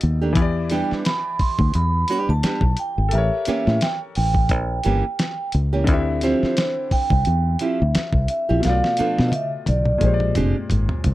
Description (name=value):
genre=R&B, neo-soul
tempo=87 BPM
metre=4/4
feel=swing 56% on 16ths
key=A minor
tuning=A4 = 445 Hz
part: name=clear concert grand piano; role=accompaniment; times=0.0-11.1 s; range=Bb2 to E5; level=-28 LUFS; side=left 4 dB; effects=none
part: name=fingered electric bass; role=bass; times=0.0-11.1 s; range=F1 to B2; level=-20 LUFS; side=equal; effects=none
part: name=dusty soul sampler-style drum kit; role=drums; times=0.0-11.1 s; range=hi-hat, kick drum, snare drum, toms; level=-23 LUFS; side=equal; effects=none
part: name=nylon-string guitar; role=second line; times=0.2-10.6 s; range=D#3 to A4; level=-24 LUFS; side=right 3 dB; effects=none
part: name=vibraphone with soft mallets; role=melody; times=0.7-10.3 s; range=C5 to C6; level=-24 LUFS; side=right 2 dB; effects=none
room=little or no reverb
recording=dry, close 1970s-style studio recording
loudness=-18 LUFS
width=side -16 dB against mid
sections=0.0-11.1 A section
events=drum fill 8.6-11.1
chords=0.4 Em7; 3.1 A7b9; 5.9 Dm11; 8.6 Bm7b5; 10.0 Bb13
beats=| 0.36 1.05 1.74 2.42 | 3.12 3.80 4.49 5.18 | 5.87 6.56 7.25 7.94 | 8.63 9.32 10.01 10.70